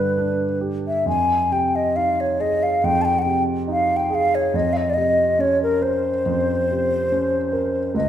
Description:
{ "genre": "classical, impressionist duo for flute and grand piano", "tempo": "70 BPM", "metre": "4/4", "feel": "rubato", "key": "unclear", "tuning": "A4 = 440 Hz", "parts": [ { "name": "mellow hollow wooden flute", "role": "melody", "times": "0.0-8.1 s", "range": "Bb4 to A5", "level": "-19 LUFS", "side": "left 1 dB", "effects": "none" }, { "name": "dark concert grand piano", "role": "accompaniment", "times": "0.0-8.1 s", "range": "Db2 to Bb4", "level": "-23 LUFS", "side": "right 2 dB", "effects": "none" } ], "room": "wet recital hall reverb, RT60 1.5 s", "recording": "minimal, uncompressed stereo recording", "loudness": "-18 LUFS", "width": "side -10 dB against mid", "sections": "0.0-8.1 A section", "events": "none", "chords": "0.0 G; 1.1 Fm7; 4.5 Bbmadd9/F" }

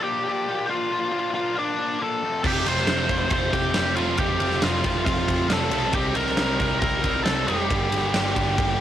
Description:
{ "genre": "quiet-loud alternative rock", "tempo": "137 BPM", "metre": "4/4", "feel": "straight", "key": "unclear", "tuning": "A4 = 441 Hz", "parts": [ { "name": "octave-fuzz lead guitar", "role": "melody", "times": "0.0-8.8 s", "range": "D4 to C6", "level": "-25 LUFS", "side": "equal", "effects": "distortion, cassette tape" }, { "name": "cranked stack guitar", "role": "riff", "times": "0.0-8.8 s", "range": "F2 to Eb4", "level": "-30 LUFS", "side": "left 8 dB", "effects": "overdrive, cassette tape" }, { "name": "distorted electric guitar", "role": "riff", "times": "2.4-8.8 s", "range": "F2 to C4", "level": "-29 LUFS", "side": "equal", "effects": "overdrive, cassette tape" }, { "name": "sludgy distorted guitar", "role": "riff", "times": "2.4-8.8 s", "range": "F2 to C4", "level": "-31 LUFS", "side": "right 8 dB", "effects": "overdrive, cassette tape" }, { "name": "hollow-body short-scale picked electric bass", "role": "bass", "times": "2.4-8.8 s", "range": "F1 to C2", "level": "-30 LUFS", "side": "equal", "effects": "none" }, { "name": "huge arena drum kit", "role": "drums", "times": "2.4-8.7 s", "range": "crash cymbal, kick drum, ride cymbal, snare drum", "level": "-25 LUFS", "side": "right 1 dB", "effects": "cassette tape" } ], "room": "small room ambience", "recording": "home recording on cassette", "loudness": "-21 LUFS", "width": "side -11 dB against mid", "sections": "0.0-8.8 A section", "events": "none", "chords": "0.0 Bb; 2.2 Fadd9; 5.9 Cm; 7.7 Gm" }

